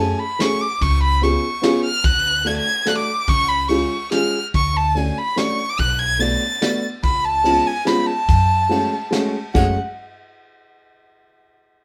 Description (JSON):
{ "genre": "musette waltz", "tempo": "144 BPM", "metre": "3/4", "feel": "straight", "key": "F# harmonic minor", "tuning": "A4 = 440 Hz", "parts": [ { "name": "rich violin", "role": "melody", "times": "0.0-9.7 s", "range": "F#5 to A6", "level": "-22 LUFS", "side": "equal", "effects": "none" }, { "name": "dark upright piano", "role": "accompaniment", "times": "0.0-9.7 s", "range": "G#3 to A4", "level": "-23 LUFS", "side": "equal", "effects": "none" }, { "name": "upright bass", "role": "bass", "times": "0.0-9.7 s", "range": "F#1 to F#2", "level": "-24 LUFS", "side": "equal", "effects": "none" }, { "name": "vintage brush drum kit", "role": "drums", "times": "0.4-9.7 s", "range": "crash cymbal, kick drum, ride cymbal, snare drum", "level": "-28 LUFS", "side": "equal", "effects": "none" } ], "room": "moderate studio reverb, RT60 0.6 s", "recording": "none", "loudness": "-19 LUFS", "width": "mono", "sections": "0.0-9.5 A section; 9.5-10.8 B section", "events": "none", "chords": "0.0 F#madd9; 0.8 C#7; 2.0 D; 3.3 C#; 4.5 Dmaj7; 5.8 Bm7; 7.0 C#7; 8.3 F#madd9" }